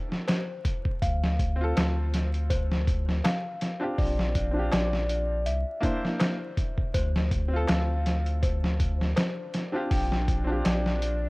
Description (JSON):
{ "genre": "trip hop", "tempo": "81 BPM", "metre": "4/4", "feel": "swing 55% on 16ths", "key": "D minor", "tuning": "A4 = 440 Hz", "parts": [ { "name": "celesta", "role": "arpeggios", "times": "0.0-11.3 s", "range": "C5 to G5", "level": "-34 LUFS", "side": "left 2 dB", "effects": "tape echo" }, { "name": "dusty soul sampler-style drum kit", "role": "drums", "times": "0.1-11.2 s", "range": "hi-hat, kick drum, snare drum", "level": "-28 LUFS", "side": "equal", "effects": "overdrive" }, { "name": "darbuka", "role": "percussion", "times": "0.3-10.8 s", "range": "none", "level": "-37 LUFS", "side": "left 1 dB", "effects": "none" }, { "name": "soft dub sub bass", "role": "bass", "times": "1.0-11.3 s", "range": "Bb1 to D2", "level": "-27 LUFS", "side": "equal", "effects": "tube saturation" }, { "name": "clear upright piano", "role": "accompaniment", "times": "1.6-11.3 s", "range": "Bb3 to C5", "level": "-33 LUFS", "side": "equal", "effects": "harmonic tremolo, vintage 12-bit sampler grit, tape echo" }, { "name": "bowed-like drone", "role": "texture", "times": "8.9-11.3 s", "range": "D4", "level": "-42 LUFS", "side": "right 1 dB", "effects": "none" } ], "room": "small room ambience", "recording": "worn, warbling old tape, cassette tape, vinyl crackle, warbly pitch drift", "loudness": "-24 LUFS", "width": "side -25 dB against mid", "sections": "0.0-11.3 A section", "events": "none", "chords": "0.0 N.C.; 1.0 Dm7; 4.0 Bb6; 5.5 C9; 6.9 Dm7; 9.9 Bb6", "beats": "0.28 | 1.02 1.76 2.50 3.24 | 3.98 4.72 5.46 6.21 | 6.95 7.69 8.43 9.17 | 9.91 10.65" }